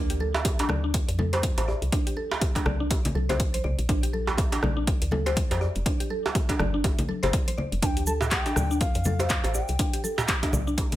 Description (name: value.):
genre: afro house.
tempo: 122 BPM.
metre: 4/4.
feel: swing 58% on 16ths.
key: D minor.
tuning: A4 = 441 Hz.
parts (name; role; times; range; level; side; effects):
mallet-like synth pluck; arpeggios; 0.0-10.8 s; D4 to D5; -31 LUFS; equal; lush chorus, sidechain pumping, tape echo.
woody FM bass; bass; 0.0-10.9 s; F1 to F2; -28 LUFS; equal; sidechain pumping.
afro-pop drum kit; drums; 0.1-11.0 s; handclaps, hi-hat, rim click, toms; -31 LUFS; equal; studio reverb.
congas; percussion; 0.2-11.0 s; none; -32 LUFS; left 2 dB; none.
djembe; percussion; 0.3-10.9 s; none; -31 LUFS; right 4 dB; none.
electronic kick drum; drums; 0.4-10.9 s; none; -27 LUFS; equal; overdrive, studio reverb.
breathy bass bansuri; melody; 7.8-10.0 s; F5 to A5; -34 LUFS; left 2 dB; tape echo.
cabasa; percussion; 7.8-11.0 s; none; -37 LUFS; right 2 dB; none.
room: small room reverb.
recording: none.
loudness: -23 LUFS.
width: side -14 dB against mid.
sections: 0.0-11.0 A section.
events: none.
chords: 0.0 Dm; 1.9 C5; 3.9 Bb; 5.9 G5; 7.8 Dm; 9.8 C5.